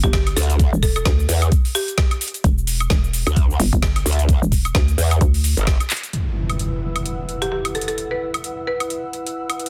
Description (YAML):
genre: bass house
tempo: 130 BPM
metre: 4/4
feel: swing 57% on 16ths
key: E minor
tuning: A4 = 439 Hz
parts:
  - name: buzzing marimba with hard mallets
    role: melody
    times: 0.0-2.4, 7.4-9.3 s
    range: G4 to B4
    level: -28 LUFS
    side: equal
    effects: digital delay
  - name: hollow knocking FM bass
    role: bass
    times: 0.0-5.6 s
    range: E1 to D2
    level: -22 LUFS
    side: equal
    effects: sidechain pumping
  - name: electronic kick drum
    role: drums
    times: 0.0-5.8 s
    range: none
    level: -20 LUFS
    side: equal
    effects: overdrive
  - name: garage drum kit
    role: drums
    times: 0.0-9.7 s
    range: cabasa, handclaps, hi-hat, snare drum, woodblock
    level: -27 LUFS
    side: equal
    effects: overdrive
  - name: growl bass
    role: bass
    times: 0.4-5.8 s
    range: G1 to E2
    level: -20 LUFS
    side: equal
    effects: chorus, overdrive, sidechain pumping
  - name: impact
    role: sound effects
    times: 6.1-8.0 s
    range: none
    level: -29 LUFS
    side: equal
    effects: none
  - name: airy breathy pad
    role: texture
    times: 6.1-9.7 s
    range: E4 to E6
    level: -32 LUFS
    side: equal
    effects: chorus, sidechain pumping
room: little or no reverb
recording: dense, heavily limited modern master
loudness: -20 LUFS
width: mono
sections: 0.0-6.1 A section; 6.1-9.7 B section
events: drop 0.0-6.1; drum fill 5.9; impact 6.1-8.0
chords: 0.0 E5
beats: 0.13 | 0.59 1.06 1.52 1.98 | 2.44 2.90 3.36 3.83 | 4.29 4.75 5.21 5.67 | 6.13 6.59 7.06 7.52 | 7.98 8.44 8.90 9.36